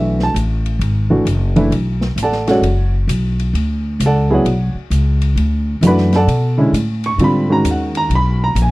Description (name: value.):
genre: modal jazz.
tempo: 132 BPM.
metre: 4/4.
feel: swing 65% on 8ths.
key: unclear.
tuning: A4 = 440 Hz.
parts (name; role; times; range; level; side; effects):
dark grand piano; accompaniment; 0.0-8.7 s; D3 to C#6; -15 LUFS; right 1 dB; none.
upright bass; bass; 0.0-8.7 s; F#1 to B2; -16 LUFS; equal; none.
open jazz drum kit; drums; 0.2-8.7 s; hi-hat, ride cymbal, snare drum; -29 LUFS; left 2 dB; none.
room: little or no reverb.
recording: dry, close 1970s-style studio recording.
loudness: -13 LUFS.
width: side -20 dB against mid.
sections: 0.0-8.7 A section.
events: none.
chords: 0.0 Bm9; 7.2 G#m9.